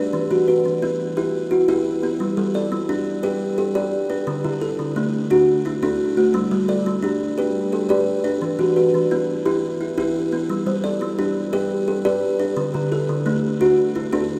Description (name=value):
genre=southern african traditional, mbira-style interlocking cycle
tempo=116 BPM (dotted quarters)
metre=12/8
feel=straight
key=G major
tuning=A4 = 440 Hz
part: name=buzzing kalimba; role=arpeggios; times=0.0-14.4 s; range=D3 to D5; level=-25 LUFS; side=equal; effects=none
part: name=kalimba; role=arpeggios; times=0.0-14.4 s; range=D3 to D5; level=-23 LUFS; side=equal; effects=none
room=wet cathedral reverb, RT60 6.1 s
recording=in a vast, echoing space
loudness=-21 LUFS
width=mono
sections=0.0-10.5 A section; 10.5-14.4 B section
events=none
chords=0.1 Em; 2.2 G; 4.3 D; 6.3 G; 8.4 Em; 10.5 G; 12.6 D